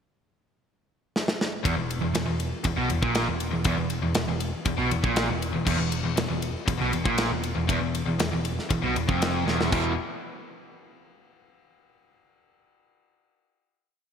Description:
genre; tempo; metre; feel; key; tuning
hard rock; 119 BPM; 4/4; straight; unclear; A4 = 440 Hz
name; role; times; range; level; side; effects
tight metal drum kit; drums; 1.2-9.8 s; crash cymbal, kick drum, ride cymbal, snare drum; -28 LUFS; equal; none
overdriven electric guitar; riff; 1.6-9.9 s; E2 to E3; -29 LUFS; right 8 dB; none
tight distorted guitar; riff; 1.6-9.9 s; E2 to E3; -30 LUFS; left 10 dB; distortion
overdriven picked electric bass; bass; 1.7-10.0 s; E1 to B1; -31 LUFS; left 1 dB; none
room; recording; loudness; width
moderate lush hall reverb, RT60 2.6 s; bright 1980s-style digital production; -24 LUFS; side -7 dB against mid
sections
0.0-1.6 pickup bar; 1.6-9.7 riff; 9.7-11.7 final chord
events
drum fill 1.1-1.6, 9.5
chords
0.0 N.C.; 1.6 E5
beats
0.15 0.65 1.15 | 1.65 2.15 2.65 3.15 | 3.65 4.16 4.66 5.16 | 5.67 6.17 6.67 7.18 | 7.69 8.19 8.70 9.21 | 9.71

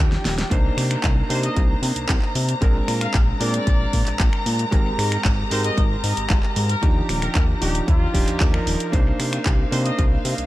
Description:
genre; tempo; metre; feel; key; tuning
nu-disco, nu disco; 114 BPM; 4/4; straight; C minor; A4 = 435 Hz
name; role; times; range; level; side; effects
warm electric grand piano; accompaniment; 0.0-10.5 s; F3 to C5; -27 LUFS; right 2 dB; dub echo
dark studio violin section; sustained chords; 0.0-10.5 s; F5 to Bb5; -30 LUFS; left 2 dB; sidechain pumping
fat analog bass; bass; 0.0-10.5 s; Eb1 to C3; -23 LUFS; equal; none
pop drum kit; drums; 0.1-10.5 s; finger snaps, handclaps, hi-hat, snare drum; -28 LUFS; equal; dub echo
electronic kick drum; drums; 0.5-10.1 s; none; -20 LUFS; equal; none
clear trumpet section; melody; 1.3-10.0 s; F4 to F5; -31 LUFS; left 2 dB; tape echo
room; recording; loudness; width
little or no reverb; echo-heavy mix; -18 LUFS; side -16 dB against mid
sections
0.0-10.5 A section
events
drum fill 0.1-0.5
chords
0.0 Ebmaj9; 0.5 Cm9; 2.6 Bb9; 4.7 Abmaj9; 6.8 Ebmaj9; 8.9 Cm9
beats
| 0.51 1.04 1.56 2.09 | 2.62 3.14 3.67 4.20 | 4.72 5.25 5.78 6.30 | 6.83 7.35 7.88 8.41 | 8.93 9.46 9.98

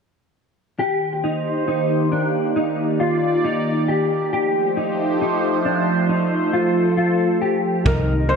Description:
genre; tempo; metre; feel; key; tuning
dream pop; 68 BPM; 4/4; straight; C dorian; A4 = 440 Hz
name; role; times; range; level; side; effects
phased analog pad; sustained chords; 0.8-8.4 s; Eb3 to D5; -21 LUFS; right 1 dB; phaser, chorus
mellow electric guitar; arpeggios; 0.8-8.4 s; D4 to G4; -21 LUFS; left 1 dB; ensemble chorus, ping-pong delay
felt-muted upright piano; melody; 7.9-8.4 s; Bb4 to C5; -22 LUFS; left 1 dB; none
vintage muted fingered electric bass; bass; 7.9-8.4 s; C2; -20 LUFS; equal; none
vintage drum kit; drums; 7.9-8.1 s; kick drum, toms; -22 LUFS; right 1 dB; gated reverb
room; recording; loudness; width
wet plate reverb, RT60 3.1 s; bright 1980s-style digital production; -18 LUFS; side -6 dB against mid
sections
0.8-7.9 A section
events
none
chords
0.8 Cm7; 4.3 Fadd9; 7.9 Cm7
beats
| 0.80 1.68 2.56 3.44 | 4.33 5.21 6.09 6.97 | 7.86

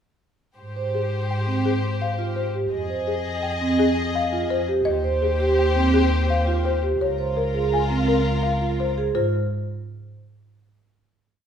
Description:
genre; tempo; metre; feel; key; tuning
classical, minimalist pattern music; 168 BPM; 6/4; straight; Ab major; A4 = 439 Hz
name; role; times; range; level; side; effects
warm studio violin section; sustained chords; 0.6-8.9 s; F4 to Eb5; -28 LUFS; left 4 dB; none
dark double bass; bass; 0.6-9.3 s; Db2 to Ab2; -25 LUFS; equal; none
vibraphone with soft mallets; arpeggios; 0.8-9.3 s; C4 to C5; -24 LUFS; right 5 dB; none
folk marimba with medium mallets; melody; 0.9-9.3 s; Ab4 to Ab5; -27 LUFS; left 7 dB; none
room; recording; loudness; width
wet recital hall reverb, RT60 1.5 s; recorded in a church or concert hall; -20 LUFS; side -8 dB against mid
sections
0.6-9.2 A section; 9.2-11.3 final chord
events
none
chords
0.6 Abmaj7; 2.7 Fm7; 4.9 Abmaj7/Eb; 7.0 Db6; 9.2 N.C.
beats
| 0.58 0.94 1.29 1.65 2.01 2.37 | 2.72 3.08 3.44 3.79 4.15 4.51 | 4.87 5.22 5.58 5.94 6.29 6.65 | 7.01 7.37 7.72 8.08 8.44 8.79 | 9.15

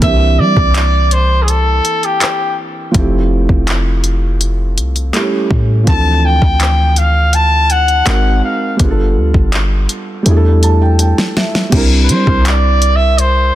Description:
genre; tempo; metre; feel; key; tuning
contemporary R&B; 82 BPM; 4/4; straight; unclear; A4 = 439 Hz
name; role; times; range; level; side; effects
warm trumpet; melody; 0.0-13.6 s; G4 to A5; -15 LUFS; equal; none
felt-muted upright piano; accompaniment; 0.0-13.6 s; E3 to A5; -18 LUFS; right 2 dB; none
warm 808-style bass; bass; 0.0-13.5 s; F1 to G3; -12 LUFS; equal; none
smooth R&B drum kit; drums; 0.0-13.4 s; crash cymbal, handclaps, hi-hat, kick drum, snare drum; -16 LUFS; equal; none
room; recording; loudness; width
little or no reverb; dense, heavily limited modern master; -10 LUFS; side -13 dB against mid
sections
0.0-11.7 A section; 11.7-13.6 B section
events
drum fill 10.3-11.7; felt piano fill 10.3-11.7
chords
0.0 C7; 2.9 Fmaj7; 5.1 A7; 5.9 Dm7; 8.1 G#9; 8.8 G7; 10.3 A7sus4; 11.7 C7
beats
| 0.02 0.75 1.48 2.21 | 2.94 3.68 4.41 5.14 | 5.87 6.60 7.34 8.07 | 8.80 9.53 10.26 10.99 | 11.73 12.46 13.19

